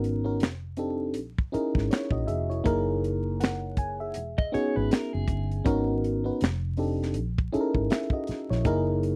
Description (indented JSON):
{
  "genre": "R&B, neo-soul",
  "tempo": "80 BPM",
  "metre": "4/4",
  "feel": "swing 59% on 16ths",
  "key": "unclear",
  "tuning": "A4 = 440 Hz",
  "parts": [
    { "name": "mellow FM electric piano", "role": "accompaniment", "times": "0.0-9.2 s", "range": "A#3 to G#5", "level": "-30 LUFS", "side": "equal", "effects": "chorus" },
    { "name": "vintage muted fingered electric bass", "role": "bass", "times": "0.0-9.2 s", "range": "E1 to A#1", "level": "-33 LUFS", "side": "equal", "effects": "none" },
    { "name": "tight funk drum kit", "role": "drums", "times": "0.0-9.2 s", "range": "finger snaps, hi-hat, kick drum, snare drum", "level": "-29 LUFS", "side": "equal", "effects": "none" },
    { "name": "electric guitar through a small old amp", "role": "second line", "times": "4.4-5.6 s", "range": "G#4 to D#5", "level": "-37 LUFS", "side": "equal", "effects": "none" }
  ],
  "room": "little or no reverb",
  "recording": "dry, close 1970s-style studio recording, vinyl crackle",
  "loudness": "-28 LUFS",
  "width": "mono",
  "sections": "0.0-9.2 A section",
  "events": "none",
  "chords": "0.4 F7; 1.2 A#m7b5; 2.7 F#13; 4.2 E6; 5.7 G#m9; 6.4 F7; 7.2 A#m7b5; 8.7 F#13"
}